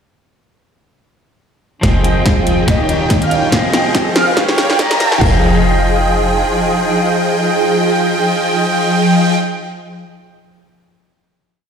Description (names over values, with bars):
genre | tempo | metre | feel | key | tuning
future bass | 142 BPM | 4/4 | swing 55% on 16ths, half-time | F minor | A4 = 443 Hz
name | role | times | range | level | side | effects
electric guitar at the edge of break-up | accompaniment | 1.8-10.1 s | Eb3 to Eb5 | -21 LUFS | left 2 dB | sidechain pumping, digital delay
clear symphonic string section | sustained chords | 1.8-9.4 s | Db3 to Ab4 | -24 LUFS | equal | sidechain pumping, low-pass filter
airy dreamy lead | arpeggios | 1.8-9.4 s | G5 | -22 LUFS | right 1 dB | chorus, sidechain pumping
supersaw chords | riff | 1.8-9.4 s | Eb3 to G5 | -16 LUFS | right 1 dB | phaser, sidechain pumping, low-pass filter, digital delay
warm 808-style bass | bass | 1.8-6.4 s | Eb1 to G1 | -18 LUFS | equal | sidechain pumping
big-room dance drum kit | drums | 1.8-5.3 s | crash cymbal, hi-hat, snare drum | -18 LUFS | equal | studio reverb
electronic kick drum | drums | 1.8-5.3 s | none | -16 LUFS | equal | studio reverb
riser | sound effects | 2.8-5.2 s | none | -25 LUFS | equal | none
breathy flute-like synth lead | melody | 2.7-5.2 s | Eb5 to Bb5 | -20 LUFS | right 1 dB | ensemble chorus, sidechain pumping, digital delay
room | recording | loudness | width
moderate lush hall reverb, RT60 2.1 s | played on a big sound system in a bare room, large studio reverb, high-pass filter | -11 LUFS | side -7 dB against mid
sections
1.8-5.2 build; 5.2-8.6 final chord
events
build-up 1.8-5.2; drum fill 1.8-5.2; filter sweep 1.8-5.2; riser 2.8-5.2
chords
1.8 Fm7; 2.7 Eb7; 3.5 Fm7; 4.4 Gm7b5; 5.2 Fm7